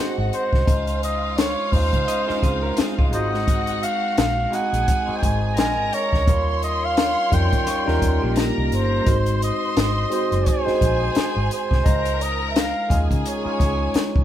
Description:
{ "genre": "lush 1970s-style soul", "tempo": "86 BPM", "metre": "4/4", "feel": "swing 58% on 16ths", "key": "unclear", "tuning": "A4 = 440 Hz", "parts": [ { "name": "warm flugelhorn", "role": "melody", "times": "0.0-14.2 s", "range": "C5 to Ab5", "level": "-25 LUFS", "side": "right 1 dB", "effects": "none" }, { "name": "warm studio violin section", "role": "second line", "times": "0.0-14.2 s", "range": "F4 to C6", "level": "-29 LUFS", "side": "equal", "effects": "none" }, { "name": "barky tine electric piano", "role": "accompaniment", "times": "0.0-14.2 s", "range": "G3 to Eb5", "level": "-26 LUFS", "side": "equal", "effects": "overdrive, phaser" }, { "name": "electric guitar through a small old amp", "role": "riff", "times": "0.0-3.3, 7.7-9.0 s", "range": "Ab3 to Eb5", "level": "-28 LUFS", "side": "right 2 dB", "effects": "none" }, { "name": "vintage muted fingered electric bass", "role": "bass", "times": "0.2-14.2 s", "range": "Gb1 to Eb3", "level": "-24 LUFS", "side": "equal", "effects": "none" }, { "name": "compact cocktail drum kit", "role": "drums", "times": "0.3-14.2 s", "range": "hi-hat, kick drum, snare drum", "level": "-22 LUFS", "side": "left 1 dB", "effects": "none" } ], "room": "light reverb", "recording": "band playing live in one room", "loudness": "-18 LUFS", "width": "side -11 dB against mid", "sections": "0.0-14.2 A section", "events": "none", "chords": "0.0 Ab7; 0.7 Dbmaj9; 3.1 Ab7; 5.6 Bb9; 6.3 Eb9; 9.1 Ab7; 11.9 Dbmaj9" }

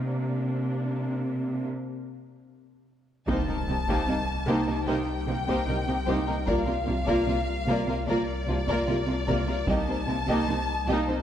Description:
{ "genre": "cinematic, hybrid orchestral and electronic film score", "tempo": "75 BPM", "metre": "4/4", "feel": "straight", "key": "C dorian", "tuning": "A4 = 436 Hz", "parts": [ { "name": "rich symphonic viola section", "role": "accompaniment", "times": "0.0-11.2 s", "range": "Bb3 to F4", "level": "-30 LUFS", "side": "right 1 dB", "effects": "none" }, { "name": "rich symphonic cello section", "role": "bass", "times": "0.0-11.2 s", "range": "C3", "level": "-32 LUFS", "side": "right 1 dB", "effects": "none" }, { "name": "rich symphonic violin section", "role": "melody", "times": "3.3-11.2 s", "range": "D5 to A5", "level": "-33 LUFS", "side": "left 4 dB", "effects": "none" }, { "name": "warm symphonic violin section", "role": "second line", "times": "3.3-11.2 s", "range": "C4 to Eb5", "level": "-32 LUFS", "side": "left 2 dB", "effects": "none" }, { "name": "rich symphonic double bass section", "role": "bass", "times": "3.3-11.0 s", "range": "C2", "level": "-34 LUFS", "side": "right 2 dB", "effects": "none" }, { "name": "warm sub bass", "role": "bass", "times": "3.3-11.2 s", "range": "C2", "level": "-33 LUFS", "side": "equal", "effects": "none" }, { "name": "taiko ensemble", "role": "drums", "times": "3.3-11.0 s", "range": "none", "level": "-36 LUFS", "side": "equal", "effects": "none" }, { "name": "impact", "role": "sound effects", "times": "3.3-6.5 s", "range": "none", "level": "-38 LUFS", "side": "equal", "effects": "none" } ], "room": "moderate concert hall reverb, RT60 2.4 s", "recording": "none", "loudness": "-25 LUFS", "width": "side -10 dB against mid", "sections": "0.0-3.3 A section; 3.3-11.2 B section", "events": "build-up 0.0-3.3; break 1.7-3.3; impact 3.3-6.5", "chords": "0.1 Bb/C; 3.3 Cm7; 6.5 Bb/C; 9.7 Cm7" }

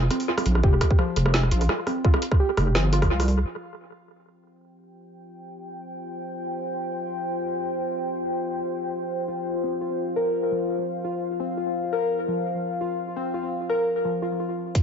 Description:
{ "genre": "half-time drum and bass", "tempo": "170 BPM", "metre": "4/4", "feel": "swing 54% on 16ths, half-time", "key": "unclear", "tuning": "A4 = 440 Hz", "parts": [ { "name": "warbly dusty pluck", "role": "arpeggios", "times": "0.0-3.3, 9.3-14.6 s", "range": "F3 to Bb4", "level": "-28 LUFS", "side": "left 1 dB", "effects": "wide subtle chorus, tape echo" }, { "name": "deep soft wobble bass", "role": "bass", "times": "0.0-3.4 s", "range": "F1 to C2", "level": "-21 LUFS", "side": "equal", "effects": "chorus" }, { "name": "drum and bass drum kit", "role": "drums", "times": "0.1-3.4, 14.8 s", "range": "hi-hat, rim click, snare drum", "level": "-26 LUFS", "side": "right 1 dB", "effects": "analog delay" }, { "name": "electronic kick drum", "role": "drums", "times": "0.6-3.1, 14.8 s", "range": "none", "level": "-20 LUFS", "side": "equal", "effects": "none" }, { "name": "deep dark ambient pad", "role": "sustained chords", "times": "5.3-14.8 s", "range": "F4 to G5", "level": "-28 LUFS", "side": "left 2 dB", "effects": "chorus, built-in reverb, sidechain pumping" } ], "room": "moderate spring reverb, RT60 1.1 s", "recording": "echo-heavy mix, nothing above 7.6 kHz", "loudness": "-22 LUFS", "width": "side -7 dB against mid", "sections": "0.0-3.5 A section; 3.5-14.8 B section", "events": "drop 0.0-3.5", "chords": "0.0 F5" }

